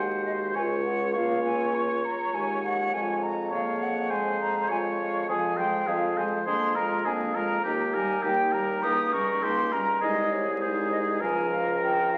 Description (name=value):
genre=quick classical-period movement for wind quintet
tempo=101 BPM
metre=4/4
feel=straight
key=Db major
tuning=A4 = 440 Hz
part: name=bright silver concert flute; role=melody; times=0.0-12.2 s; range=C5 to Eb6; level=-31 LUFS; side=equal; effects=none
part: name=warm oboe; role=second line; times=0.0-12.2 s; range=G4 to Db5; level=-32 LUFS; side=equal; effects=none
part: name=mellow French horn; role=accompaniment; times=0.0-12.2 s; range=F3 to Bb3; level=-38 LUFS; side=equal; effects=none
part: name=warm clarinet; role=accompaniment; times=0.0-12.2 s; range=Db4 to Ab4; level=-37 LUFS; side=equal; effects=none
part: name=mellow bassoon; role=bass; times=0.0-12.2 s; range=C2 to F2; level=-33 LUFS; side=equal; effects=none
room=wet recital hall reverb, RT60 1.5 s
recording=very old 78 rpm record, vinyl crackle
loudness=-27 LUFS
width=mono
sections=0.0-12.2 A section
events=none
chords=0.0 Ab7/Eb; 0.6 Db; 2.9 Db/F; 5.3 Fm; 6.5 Bb7/F; 7.6 Eb; 8.8 Eb7/Db; 10.0 Ab/C; 11.2 Bbm/Db